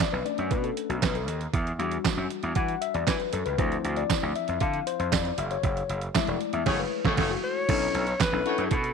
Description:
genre	early-eighties boogie funk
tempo	117 BPM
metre	4/4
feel	straight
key	unclear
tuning	A4 = 440 Hz
part	mellow tine electric piano	accompaniment	0.0-8.7 s	F3 to F#5	-30 LUFS	left 11 dB	none
part	detuned 8-bit digital drum machine	drums	0.0-8.9 s	crash cymbal, handclaps, hi-hat, kick drum, snare drum	-28 LUFS	right 5 dB	overdrive
part	tambourine	percussion	0.0-8.3 s	none	-39 LUFS	right 14 dB	none
part	gritty slap bass	bass	0.1-8.9 s	E1 to E3	-30 LUFS	right 1 dB	overdrive
part	clear horn section	second line	6.7-8.6 s	A3 to C#5	-31 LUFS	equal	slapback echo
part	breathy alto saxophone	melody	7.4-8.9 s	G#4 to C#5	-28 LUFS	left 2 dB	slapback echo
room	light reverb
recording	1960s-style stereo with parts hard left and right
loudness	-24 LUFS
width	side -6 dB against mid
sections	0.0-7.7 A section; 7.7-8.9 B section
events	tine electric piano solo 0.0-7.7; band accent 5.6-7.7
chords	0.0 Bm9; 1.5 Em9; 3.6 Dm9; 5.4 F#m9; 7.7 Bm11

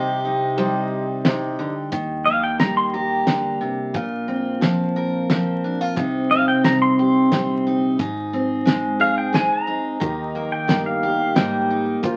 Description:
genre	honky-tonk and classic country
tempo	89 BPM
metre	3/4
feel	straight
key	unclear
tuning	A4 = 440 Hz
part	bright upright piano	melody	0.0-1.5 s	C5 to Eb5	-39 LUFS	equal	none
part	dark concert grand piano	accompaniment	0.0-1.7, 10.0-12.2 s	Eb4 to C5	-30 LUFS	equal	none
part	picked steel-string acoustic guitar	accompaniment	0.0-12.2 s	Ab2 to Bb4	-23 LUFS	equal	none
part	upright bass	bass	0.0-12.2 s	G1 to Eb2	-37 LUFS	equal	none
part	damped 70s drum kit	drums	0.6-12.2 s	hi-hat, kick drum, ride cymbal, snare drum	-23 LUFS	equal	none
part	pedal steel guitar	second line	2.3-12.2 s	F5 to C6	-24 LUFS	equal	none
room	wet studio reverb, RT60 0.5 s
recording	very old 78 rpm record, vinyl crackle, nothing above 10.9 kHz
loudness	-21 LUFS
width	mono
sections	0.0-1.9 A section; 1.9-12.2 B section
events	pedal steel guitar solo 1.9-12.2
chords	0.0 Cm; 1.9 Eb; 3.9 Bbsus2; 6.0 Cm; 8.0 Ab; 10.0 Eb

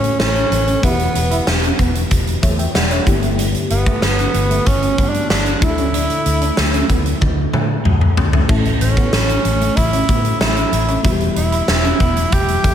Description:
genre	1980s-style pop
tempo	94 BPM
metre	4/4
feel	straight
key	A mixolydian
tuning	A4 = 438 Hz
part	breathy tenor saxophone	melody	0.0-12.7 s	B3 to G4	-20 LUFS	right 1 dB	slapback echo
part	mellow FM electric piano	accompaniment	0.0-12.7 s	G2 to G5	-23 LUFS	left 3 dB	chorus, slapback echo
part	vintage muted fingered electric bass	bass	0.0-12.7 s	E1 to D3	-20 LUFS	equal	none
part	huge arena drum kit	drums	0.0-12.7 s	crash cymbal, hi-hat, kick drum, snare drum, toms	-17 LUFS	equal	none
part	electric guitar at the edge of break-up	riff	0.2-12.7 s	F#3 to E4	-26 LUFS	right 3 dB	lush chorus, slapback echo
room	moderate scoring stage reverb, RT60 1.6 s, studio reverb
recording	big arena sound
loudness	-14 LUFS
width	side -9 dB against mid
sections	0.0-12.7 A section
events	drum fill 7.2-8.5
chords	0.0 A; 0.8 Em; 3.1 G6; 5.6 Dsus2; 8.5 A; 11.0 Em

